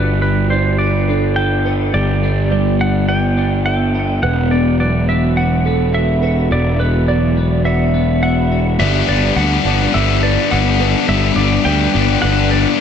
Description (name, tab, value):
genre	post-rock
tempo	105 BPM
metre	4/4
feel	straight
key	G major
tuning	A4 = 440 Hz
part	clean lap steel guitar	melody	0.0-12.8 s	B4 to G5	-21 LUFS	right 1 dB	ping-pong delay
part	felt-muted upright piano	arpeggios	0.0-12.8 s	A4 to E5	-26 LUFS	right 7 dB	ping-pong delay
part	twelve-string electric guitar	arpeggios	0.0-12.8 s	E2 to A4	-20 LUFS	equal	ensemble chorus, ping-pong delay
part	fuzz picked electric bass	bass	0.0-12.6 s	E1 to D2	-16 LUFS	equal	overdrive
part	distorted electric guitar	riff	8.8-12.8 s	G2 to D4	-16 LUFS	left 9 dB	overdrive
room	moderate huge ambient reverb, RT60 7.3 s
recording	dreamy mix soaked in reverb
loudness	-13 LUFS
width	side -8 dB against mid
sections	0.0-8.8 A section; 8.8-12.8 B section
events	build-up 8.8-12.8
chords	0.0 Gadd9; 4.2 Esus2; 8.8 Gadd9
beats	0.23 0.80 1.37 | 1.94 2.52 3.09 3.66 | 4.23 4.80 5.37 5.94 | 6.52 7.09 7.66 8.23 | 8.80 9.37 9.94 10.52 | 11.09 11.66 12.23 12.80